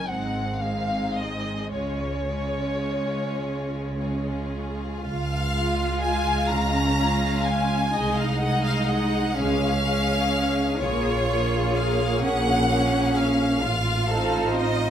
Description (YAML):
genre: classical, slow romantic movement for string orchestra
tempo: 35-44 BPM (dotted quarters)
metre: 6/8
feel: rubato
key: Db major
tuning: A4 = 441 Hz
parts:
  - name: rich chamber violin section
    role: melody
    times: 0.0-14.9 s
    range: C5 to Gb5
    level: -31 LUFS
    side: left 2 dB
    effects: none
  - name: rich studio violin section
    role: second line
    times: 0.0-14.9 s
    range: Eb4 to Bb5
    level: -28 LUFS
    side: left 2 dB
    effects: none
  - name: rich chamber viola section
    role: accompaniment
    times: 0.0-14.9 s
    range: Ab3 to Ab4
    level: -28 LUFS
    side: equal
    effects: none
  - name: rich chamber cello section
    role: bass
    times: 0.1-14.9 s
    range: Ab2 to A4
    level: -29 LUFS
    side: right 2 dB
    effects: none
  - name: warm chamber double bass section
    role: bass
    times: 0.1-14.9 s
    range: Ab1 to Db2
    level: -27 LUFS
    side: right 1 dB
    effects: none
room: moderate large studio reverb, RT60 0.8 s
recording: none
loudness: -22 LUFS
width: side -9 dB against mid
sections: 0.0-5.0 A section; 5.0-14.9 B section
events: none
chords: 0.1 Ab; 1.7 Db; 7.9 Ab/C; 9.4 Db; 10.8 Bbm7; 13.6 F7/A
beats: 0.09 | 1.71 3.41 | 5.04 6.50 | 7.93 9.37 | 10.80 12.23 | 13.61